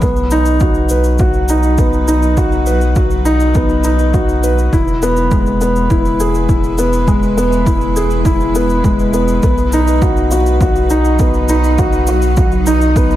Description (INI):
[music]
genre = piano and strings electronica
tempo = 102 BPM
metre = 4/4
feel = straight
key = B major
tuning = A4 = 440 Hz
[part]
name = granular cloud pad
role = sustained chords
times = 0.0-13.2 s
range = F#3 to B4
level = -26 LUFS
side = right 1 dB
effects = built-in reverb, lush chorus, sidechain pumping
[part]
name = felt-muted upright piano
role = riff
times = 0.0-13.2 s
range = G#3 to B4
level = -14 LUFS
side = left 1 dB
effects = tape echo
[part]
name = round analog bass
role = bass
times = 0.0-13.2 s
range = E1 to B1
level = -16 LUFS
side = equal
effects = sidechain pumping
[part]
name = electronic kick drum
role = drums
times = 0.0-13.1 s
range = none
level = -15 LUFS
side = equal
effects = overdrive
[part]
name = shaker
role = drums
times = 0.0-13.2 s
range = none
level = -30 LUFS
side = left 1 dB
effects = overdrive
[sound]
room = light reverb, digital ambience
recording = none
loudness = -11 LUFS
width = side -13 dB against mid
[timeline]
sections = 0.0-13.2 A section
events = fade-in on ambient pad 0.0-13.2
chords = 0.0 B; 4.7 E; 9.4 B